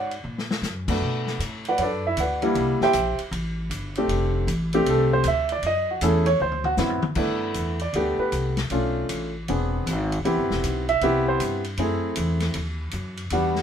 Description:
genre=jazz piano trio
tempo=156 BPM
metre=4/4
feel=swing 65% on 8ths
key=G major from 7.2 s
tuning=A4 = 440 Hz
part: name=warm baby grand piano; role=melody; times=0.0-13.6 s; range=G3 to G5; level=-23 LUFS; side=right 1 dB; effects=none
part: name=upright bass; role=bass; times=0.0-13.6 s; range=E1 to B2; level=-27 LUFS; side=left 1 dB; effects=none
part: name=vintage drum kit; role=drums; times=0.1-13.6 s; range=crash cymbal, hi-hat, kick drum, ride cymbal, snare drum, toms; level=-32 LUFS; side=left 2 dB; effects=none
room=light reverb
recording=minimal, uncompressed stereo recording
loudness=-22 LUFS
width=side -8 dB against mid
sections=0.0-7.2 A section; 7.2-13.6 B section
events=drum fill 0.2-0.6, 6.4-7.2; grand piano solo 7.2-13.6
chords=0.0 F#aug; 1.0 Bm7; 2.6 C7; 4.1 F69; 5.6 F#m9; 6.4 D13; 7.2 G69; 8.7 Bm7b5; 9.5 E7b13; 10.2 Am9 (rootless); 11.8 F#m7b5; 12.5 Ebm

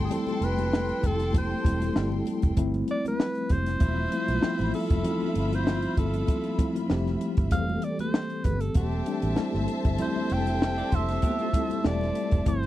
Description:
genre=lush 1970s-style soul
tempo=97 BPM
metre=4/4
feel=swing 54% on 16ths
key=unclear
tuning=A4 = 439 Hz
part: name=bright alto saxophone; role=melody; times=0.0-12.7 s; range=G4 to G5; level=-32 LUFS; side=equal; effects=none
part: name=rich studio string section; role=second line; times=0.0-12.4 s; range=F4 to C6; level=-36 LUFS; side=left 1 dB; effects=none
part: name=mellow tine electric piano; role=accompaniment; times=0.0-12.7 s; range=E3 to E5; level=-30 LUFS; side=left 2 dB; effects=medium stereo tremolo
part: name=mellow tonewheel organ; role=sustained chords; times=0.0-12.7 s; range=F3 to A4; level=-36 LUFS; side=left 1 dB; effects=fast rotary speaker, chorus vibrato
part: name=vintage muted fingered electric bass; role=bass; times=0.0-12.7 s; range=E1 to B1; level=-29 LUFS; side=equal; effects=none
part: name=compact cocktail drum kit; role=drums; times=0.1-12.7 s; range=hi-hat, kick drum, snare drum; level=-26 LUFS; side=equal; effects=none
part: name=congas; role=percussion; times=0.1-12.7 s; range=none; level=-37 LUFS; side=right 4 dB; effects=none
part: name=clean electric guitar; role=riff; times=10.8-12.3 s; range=A3 to D5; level=-36 LUFS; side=right 3 dB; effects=wide subtle chorus
room=little or no reverb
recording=dry, close 1970s-style studio recording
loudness=-24 LUFS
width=side -14 dB against mid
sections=0.0-12.7 A section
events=none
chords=0.0 Fmaj9; 2.6 G13sus4; 7.5 Fmaj9

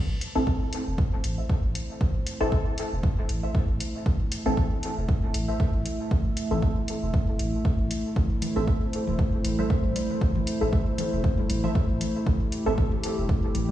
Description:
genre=dub techno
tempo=117 BPM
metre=4/4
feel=swing 55% on 16ths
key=A minor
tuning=A4 = 439 Hz
part: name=dark analog pad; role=sustained chords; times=0.0-13.7 s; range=A3 to E5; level=-31 LUFS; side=equal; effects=chorus, sidechain pumping
part: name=soft dub sub bass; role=bass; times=0.0-13.7 s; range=E1 to A1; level=-29 LUFS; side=equal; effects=sidechain pumping
part: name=electronic hi-hat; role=drums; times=0.2-13.7 s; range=none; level=-38 LUFS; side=left 2 dB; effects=none
part: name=filtered dub chord stab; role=riff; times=0.4-12.7 s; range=A4 to E5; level=-39 LUFS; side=right 1 dB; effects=phaser, ensemble chorus, sidechain pumping, dub echo
part: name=filtered dub chord stab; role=stabs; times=0.4-12.7 s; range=E3 to A4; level=-31 LUFS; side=equal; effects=chorus, phaser, sidechain pumping, dub echo
part: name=electronic kick drum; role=drums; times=0.5-13.4 s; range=none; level=-25 LUFS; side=equal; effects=none
part: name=electronic toms and congas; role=percussion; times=8.2-13.7 s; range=none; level=-34 LUFS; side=left 2 dB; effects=overdrive, sidechain pumping on toms, sidechain pumping on perc, dub echo
room=light reverb, digital ambience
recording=played on a big sound system in a bare room, stone room reverb, small room ambience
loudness=-23 LUFS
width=side -13 dB against mid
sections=0.0-13.7 A section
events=filter sweep on synth stab 0.0-13.7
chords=0.0 Am

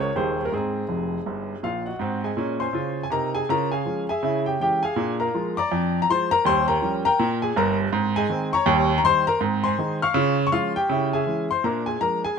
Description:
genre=jazz, stride piano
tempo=162 BPM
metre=4/4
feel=swing 60% on 8ths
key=Ab major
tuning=A4 = 441 Hz
part: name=clear upright piano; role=solo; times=0.0-12.4 s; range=Eb1 to F6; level=-21 LUFS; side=equal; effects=none
room=moderate spring reverb, RT60 2.7 s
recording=minimal, uncompressed stereo recording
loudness=-21 LUFS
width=side -6 dB against mid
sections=0.0-2.0 A section; 2.0-12.4 B section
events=upright piano fill 0.9-2.0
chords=0.1 Eb; 0.5 Ab; 2.0 Ab7; 3.5 Db; 4.2 Dbm; 5.0 Bb7; 6.4 Eb9; 7.9 Ab; 8.7 Eb7; 9.4 Ab; 10.1 Db; 10.9 Dbm; 11.6 Bb7

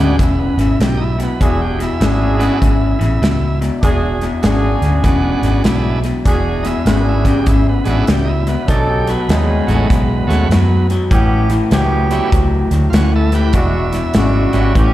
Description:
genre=electric blues shuffle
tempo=99 BPM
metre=4/4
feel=swing 64% on 8ths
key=E mixolydian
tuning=A4 = 440 Hz
part: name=overdriven tonewheel organ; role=accompaniment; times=0.0-14.7 s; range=F#3 to B4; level=-22 LUFS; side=right 5 dB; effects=slapback echo
part: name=electric guitar through a small old amp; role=riff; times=0.0-14.9 s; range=E2 to G#3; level=-19 LUFS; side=left 3 dB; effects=slapback echo
part: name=mellow horn section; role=stabs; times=0.0-14.9 s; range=G#3 to A4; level=-22 LUFS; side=right 2 dB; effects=slapback echo, tape echo
part: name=vintage muted fingered electric bass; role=bass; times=0.0-14.9 s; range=E1 to F#2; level=-16 LUFS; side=equal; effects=none
part: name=natural country drum kit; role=drums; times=0.2-14.9 s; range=hi-hat, kick drum, snare drum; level=-18 LUFS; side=equal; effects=none
room=light reverb, studio ambience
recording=live gig heard through the venue's PA, recital hall reverb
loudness=-12 LUFS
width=side -14 dB against mid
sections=0.0-14.9 A section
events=none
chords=0.0 E9; 8.7 B9; 11.1 A9; 13.5 E9

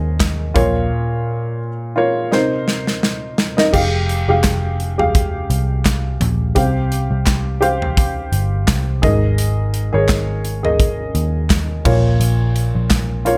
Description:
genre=piano-driven pop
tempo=85 BPM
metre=4/4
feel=swing 56% on 16ths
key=F minor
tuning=A4 = 440 Hz
part: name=dark upright piano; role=accompaniment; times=0.0-13.4 s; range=Ab2 to F5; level=-22 LUFS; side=equal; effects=plate reverb
part: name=vintage muted picked electric bass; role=bass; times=0.0-13.4 s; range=F1 to Eb2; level=-21 LUFS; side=equal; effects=none
part: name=modern studio drum kit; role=drums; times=0.2-13.4 s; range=crash cymbal, handclaps, hi-hat, kick drum, snare drum, toms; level=-21 LUFS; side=equal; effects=none
part: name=group handclap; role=percussion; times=0.2-13.1 s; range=none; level=-32 LUFS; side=equal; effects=none
room=light reverb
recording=none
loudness=-17 LUFS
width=mono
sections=0.0-3.7 A section; 3.7-13.4 A section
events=drum fill 2.3-3.7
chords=0.0 Absus2; 0.6 Bbm; 2.3 Cm7; 3.7 Fmadd9; 6.6 Csus4; 9.0 Absus2; 11.8 Bbm

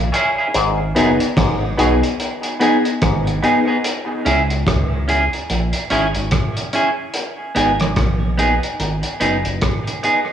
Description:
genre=dub reggae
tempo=73 BPM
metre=4/4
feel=swing 60% on 16ths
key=C# dorian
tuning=A4 = 439 Hz
part: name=rubbery square bass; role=bass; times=0.0-9.6 s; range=F#1 to C#2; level=-20 LUFS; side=equal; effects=none
part: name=semi-hollow electric guitar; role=accompaniment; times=0.1-10.2 s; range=B3 to G#4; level=-20 LUFS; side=right 2 dB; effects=spring reverb, high-pass filter, cassette tape, dub echo
part: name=clear upright piano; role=stabs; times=0.1-3.6 s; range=B3 to G#4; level=-21 LUFS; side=left 2 dB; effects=high-pass filter, cassette tape, dub echo
part: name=cloth-damped thuddy drum kit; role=drums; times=0.1-10.3 s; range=hi-hat, kick drum, rim click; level=-21 LUFS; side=equal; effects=cassette tape
part: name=auto-wah clav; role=riff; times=0.5-3.3 s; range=F#2 to B2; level=-25 LUFS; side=left 3 dB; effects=overdrive, cassette tape, dub echo
room=light reverb, studio reverb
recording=home recording on cassette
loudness=-15 LUFS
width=side -9 dB against mid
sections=0.0-3.8 A section; 3.8-10.3 B section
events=filter sweep on clean electric guitar 7.1-10.3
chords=0.0 C#m; 0.5 G#m; 3.8 C#m; 7.1 G#m

